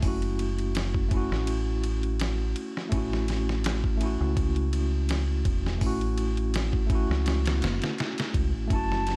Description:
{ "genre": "trip hop", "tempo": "83 BPM", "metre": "4/4", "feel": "swing 54% on 16ths", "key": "unclear", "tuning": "A4 = 439 Hz", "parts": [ { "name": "tine electric piano", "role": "accompaniment", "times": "0.0-9.2 s", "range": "A3 to F#4", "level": "-34 LUFS", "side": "equal", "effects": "tremolo, vintage 12-bit sampler grit, tape echo" }, { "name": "deep dub fingered electric bass", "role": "bass", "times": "0.0-9.2 s", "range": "E1 to C#2", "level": "-30 LUFS", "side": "equal", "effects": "tube saturation" }, { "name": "dusty soul sampler-style drum kit", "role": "drums", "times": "0.0-9.2 s", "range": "hi-hat, kick drum, ride cymbal, snare drum", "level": "-32 LUFS", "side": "equal", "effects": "studio ambience" }, { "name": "silver concert flute", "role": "melody", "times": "8.7-9.2 s", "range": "A5", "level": "-32 LUFS", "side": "equal", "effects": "none" } ], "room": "digital ambience", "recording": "dark, warm production", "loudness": "-27 LUFS", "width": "mono", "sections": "0.0-9.2 A section", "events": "none", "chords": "0.0 F#m7; 2.9 A6" }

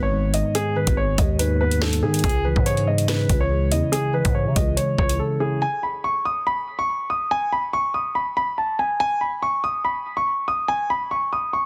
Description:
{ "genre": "hip hop, drill", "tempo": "142 BPM", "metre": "4/4", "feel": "half-time", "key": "unclear", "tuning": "A4 = 436 Hz", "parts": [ { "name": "dark concert grand piano", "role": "melody", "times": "0.0-11.7 s", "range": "G#4 to D#6", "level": "-25 LUFS", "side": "equal", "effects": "tape echo" }, { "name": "mellow tine electric piano", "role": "accompaniment", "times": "0.0-5.6 s", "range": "G#2 to E4", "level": "-27 LUFS", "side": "equal", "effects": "lush chorus" }, { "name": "growling 808-style bass", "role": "bass", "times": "0.0-5.2 s", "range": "G#1 to D#3", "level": "-26 LUFS", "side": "equal", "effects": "none" }, { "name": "drill drum kit", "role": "drums", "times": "0.3-5.2 s", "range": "hi-hat, kick drum, snare drum", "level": "-25 LUFS", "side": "equal", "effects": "none" } ], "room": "light reverb", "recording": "dense, heavily limited modern master", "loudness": "-22 LUFS", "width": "mono", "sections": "0.0-5.6 A section; 5.6-11.7 B section", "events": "drums muted 5.2-5.6", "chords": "0.0 G#m; 2.2 C#m; 5.6 N.C." }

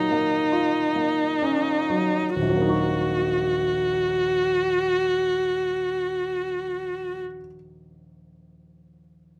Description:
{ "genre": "classical, impressionist duo for viola and grand piano", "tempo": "34 BPM", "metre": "4/4", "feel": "rubato", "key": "Eb minor", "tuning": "A4 = 440 Hz", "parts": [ { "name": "clear viola", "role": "melody", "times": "0.0-7.2 s", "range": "Eb4 to Gb4", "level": "-25 LUFS", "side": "equal", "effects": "none" }, { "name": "clear baby grand piano", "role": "accompaniment", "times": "0.0-9.4 s", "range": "Eb1 to Gb4", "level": "-30 LUFS", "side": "equal", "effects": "none" } ], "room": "moderate studio reverb, RT60 0.7 s", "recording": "none", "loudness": "-24 LUFS", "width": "mono", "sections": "0.0-2.4 A section; 2.4-9.4 B section", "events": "slowing down 0.0-2.4", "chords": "0.0 Ebm9; 2.4 Ebm" }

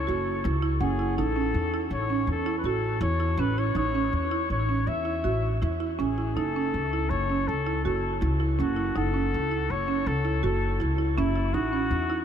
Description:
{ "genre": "contemporary instrumental, chamber music in an uneven meter", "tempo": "163 BPM", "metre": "7/4", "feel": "straight", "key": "F# dorian", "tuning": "A4 = 439 Hz", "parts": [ { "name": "clear flugelhorn", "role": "melody", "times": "0.0-12.2 s", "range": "E4 to E5", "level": "-30 LUFS", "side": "left 4 dB", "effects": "analog delay" }, { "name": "upright bass", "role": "bass", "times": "0.0-12.2 s", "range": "F#1 to E2", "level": "-28 LUFS", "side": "left 1 dB", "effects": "none" }, { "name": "buzzing marimba with medium mallets", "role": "arpeggios", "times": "0.1-12.2 s", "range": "C#4 to F#4", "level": "-28 LUFS", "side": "right 5 dB", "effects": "analog delay" }, { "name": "small celesta", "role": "texture", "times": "0.8-1.3, 7.5-9.4 s", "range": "F#5 to A5", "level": "-43 LUFS", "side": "left 4 dB", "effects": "none" } ], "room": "moderate huge ambient reverb, RT60 7.5 s", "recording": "dreamy mix soaked in reverb", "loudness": "-24 LUFS", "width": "side -8 dB against mid", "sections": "0.0-12.2 A section", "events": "none", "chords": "0.0 F#7(no3); 1.2 A; 6.4 F#m7; 11.5 A" }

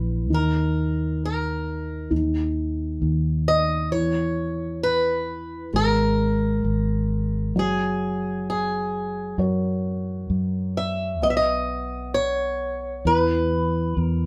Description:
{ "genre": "acoustic folk-pop ballad", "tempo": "66 BPM", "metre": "4/4", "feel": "straight", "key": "unclear", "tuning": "A4 = 442 Hz", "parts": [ { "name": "picked swing-style acoustic guitar", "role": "melody", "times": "0.0-14.3 s", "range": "G#4 to E5", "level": "-27 LUFS", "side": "equal", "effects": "none" }, { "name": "felt-muted upright piano", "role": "accompaniment", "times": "0.0-14.3 s", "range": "D#3 to C#5", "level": "-30 LUFS", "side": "equal", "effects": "none" }, { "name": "fingered electric bass", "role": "bass", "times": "0.0-14.3 s", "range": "F#1 to F#2", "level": "-28 LUFS", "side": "equal", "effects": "none" } ], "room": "moderate studio reverb, RT60 0.5 s", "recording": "band playing live in one room", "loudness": "-24 LUFS", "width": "mono", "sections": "0.0-14.3 A section", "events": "none", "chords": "0.3 D#5; 2.1 N.C.; 3.9 E5; 5.7 G#sus2; 7.6 F#; 11.2 Bsus2; 13.1 E5" }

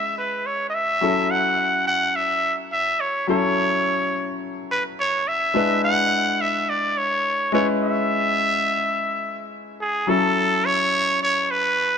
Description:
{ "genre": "R&B", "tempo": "106 BPM", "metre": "4/4", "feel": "swing 65% on 16ths", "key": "F# minor", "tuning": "A4 = 442 Hz", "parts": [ { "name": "trumpet with straight mute", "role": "melody", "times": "0.0-12.0 s", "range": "G#4 to F#5", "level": "-20 LUFS", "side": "right 1 dB", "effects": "tape echo" }, { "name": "bright concert grand piano", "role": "accompaniment", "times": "0.0-12.0 s", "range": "F#3 to B4", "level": "-25 LUFS", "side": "left 3 dB", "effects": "none" } ], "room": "moderate echo chamber reverb, RT60 1.4 s", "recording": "none", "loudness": "-19 LUFS", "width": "side -7 dB against mid", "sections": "0.0-1.0 A section; 1.0-10.1 B section; 10.1-12.0 C section", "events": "none", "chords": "0.0 C#m7; 1.0 F#m7; 5.6 E7; 7.5 C#m7; 10.1 F#m7" }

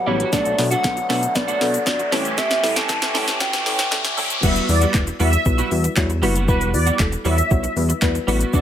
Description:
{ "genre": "dance-pop", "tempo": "117 BPM", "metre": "4/4", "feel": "straight", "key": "E dorian", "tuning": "A4 = 437 Hz", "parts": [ { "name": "hollow clarinet-like synth lead", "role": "melody", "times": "0.0-4.1 s", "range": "C#5 to A5", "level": "-23 LUFS", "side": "equal", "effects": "chorus, ping-pong delay" }, { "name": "pedal harmonium", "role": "sustained chords", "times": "0.0-4.4 s", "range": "D3 to G4", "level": "-30 LUFS", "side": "equal", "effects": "sidechain pumping" }, { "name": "riser and downlifter", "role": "sound effects", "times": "0.0-4.4 s", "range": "none", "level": "-26 LUFS", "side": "left 1 dB", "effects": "none" }, { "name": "soft round pluck", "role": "accompaniment", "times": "0.1-8.6 s", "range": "F#3 to D5", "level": "-26 LUFS", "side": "left 3 dB", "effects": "chorus, sidechain pumping" }, { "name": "twelve-string electric guitar", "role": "riff", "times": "0.1-8.6 s", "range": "G3 to G4", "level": "-26 LUFS", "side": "right 4 dB", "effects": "ensemble chorus" }, { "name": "chorused synth bass", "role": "bass", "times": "0.1-8.6 s", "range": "E1 to B2", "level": "-22 LUFS", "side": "equal", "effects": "sidechain pumping" }, { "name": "smooth R&B drum kit", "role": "drums", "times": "0.2-8.6 s", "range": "crash cymbal, handclaps, hi-hat, kick drum, shaker, snare drum", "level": "-22 LUFS", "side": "equal", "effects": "overdrive" }, { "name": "group handclap", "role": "percussion", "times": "0.8-8.1 s", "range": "none", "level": "-34 LUFS", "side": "left 6 dB", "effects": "none" }, { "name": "filtered supersaw swell", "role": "melody", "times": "4.4-8.6 s", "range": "B4 to E5", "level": "-24 LUFS", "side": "equal", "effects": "phaser, sidechain pumping, ping-pong delay" } ], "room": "light reverb, digital ambience", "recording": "high-pass filter", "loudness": "-17 LUFS", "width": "side -10 dB against mid", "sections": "0.0-4.4 A section; 4.4-8.6 B section", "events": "build-up 0.0-4.4; drum fill 0.0-4.4; riser 0.0-4.4; filter sweep 0.0-4.4; drop 4.4-8.6", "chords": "0.3 Bm7; 2.1 A7; 4.4 Emadd9" }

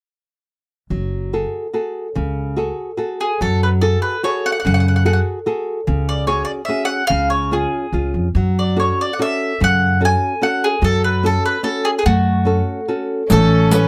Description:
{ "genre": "italian folk, Italian serenade", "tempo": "145 BPM", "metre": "3/4", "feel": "straight", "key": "F# minor", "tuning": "A4 = 442 Hz", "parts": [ { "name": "nylon-string guitar", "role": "accompaniment", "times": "0.9-13.9 s", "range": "C#3 to C#5", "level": "-24 LUFS", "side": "equal", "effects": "none" }, { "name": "upright bass", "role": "bass", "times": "0.9-13.8 s", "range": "F#1 to F#2", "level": "-20 LUFS", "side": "equal", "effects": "none" }, { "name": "mandolin", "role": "melody", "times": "3.2-13.9 s", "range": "F#4 to G#5", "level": "-21 LUFS", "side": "equal", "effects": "none" }, { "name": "warm violin", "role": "second line", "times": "13.3-13.9 s", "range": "C#4", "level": "-24 LUFS", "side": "equal", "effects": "none" }, { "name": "riq", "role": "percussion", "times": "13.3-13.9 s", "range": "none", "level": "-21 LUFS", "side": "equal", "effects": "none" } ], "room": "little or no reverb", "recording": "close, detailed microphones", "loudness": "-18 LUFS", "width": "mono", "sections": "0.9-3.4 A section; 3.4-13.3 B section", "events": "none", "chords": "0.9 F#madd9; 5.9 C#sus4; 7.1 C#; 8.4 F#m; 13.3 Aadd9" }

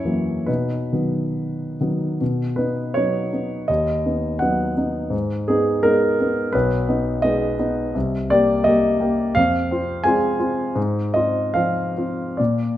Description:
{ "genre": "classical, romantic character piece for solo piano", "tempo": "68-89 BPM", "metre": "2/4", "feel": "rubato", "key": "B major", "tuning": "A4 = 440 Hz", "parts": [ { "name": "warm concert grand piano", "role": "solo", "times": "0.0-12.8 s", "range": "B1 to Ab5", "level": "-18 LUFS", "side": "equal", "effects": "none" } ], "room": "moderate recital hall reverb, RT60 1.4 s", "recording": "minimal, uncompressed stereo recording", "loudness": "-18 LUFS", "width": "side -13 dB against mid", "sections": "0.0-2.2 A section; 2.2-12.8 B section", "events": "none", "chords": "0.5 B; 3.7 B/D#; 5.1 G#m; 6.5 G#m/B; 8.0 Cm7; 9.4 Fm; 10.8 Fm/Ab" }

